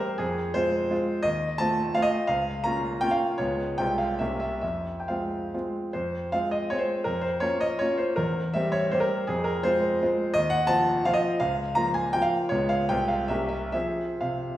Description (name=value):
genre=classical, romantic triple-time dance for piano with dotted rhythms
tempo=120-184 BPM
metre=3/4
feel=rubato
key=F minor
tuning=A4 = 440 Hz
part: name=bright grand piano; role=solo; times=0.0-14.6 s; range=C2 to Bb5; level=-24 LUFS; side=equal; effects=none
room=wet recital hall reverb, RT60 1.5 s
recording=heard from further back in the room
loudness=-24 LUFS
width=side -13 dB against mid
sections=0.0-5.9 A section; 5.9-14.6 A section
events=none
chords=0.2 Fm; 1.3 F7/Eb; 2.3 Bbm/Db; 3.4 Db7; 3.8 Fm/C; 4.2 C7b9; 4.6 Fm; 7.1 Bbm/F; 8.2 C7/E; 9.3 Fm; 10.3 F7/Eb; 11.4 Bbm/Db; 12.5 Db7; 12.9 Fm/C; 13.3 C7b9; 13.7 Fm